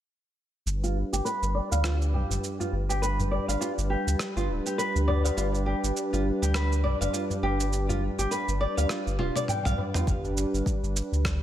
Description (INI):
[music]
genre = organic downtempo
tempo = 102 BPM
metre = 4/4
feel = swing 58% on 16ths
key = G major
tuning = A4 = 437 Hz
[part]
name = warm analog pad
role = sustained chords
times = 0.7-11.4 s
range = G3 to B4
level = -32 LUFS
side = right 1 dB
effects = wide subtle chorus, sidechain pumping
[part]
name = warm sub bass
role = bass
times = 0.7-11.4 s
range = D1 to D2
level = -27 LUFS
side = equal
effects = none
[part]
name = dusty soul sampler-style drum kit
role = drums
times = 0.7-11.4 s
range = cabasa, rim click, toms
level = -33 LUFS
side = right 1 dB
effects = none
[part]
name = flamenco guitar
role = arpeggios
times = 0.8-10.1 s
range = F4 to G5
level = -31 LUFS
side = equal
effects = vintage 12-bit sampler grit, low-pass filter, tape echo
[part]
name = tabla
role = percussion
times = 1.0-10.1 s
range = none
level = -37 LUFS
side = left 2 dB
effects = none
[part]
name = electronic kick drum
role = drums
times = 10.1-11.4 s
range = none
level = -29 LUFS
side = equal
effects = none
[sound]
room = light reverb, digital ambience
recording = none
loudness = -25 LUFS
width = side -11 dB against mid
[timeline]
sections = 0.7-10.1 A section; 10.1-11.4 B section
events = filter sweep on sub bass 0.7-10.1; filter sweep on nylon-string guitar 0.7-10.1; drum fill 9.2-10.1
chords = 0.7 G7; 10.1 G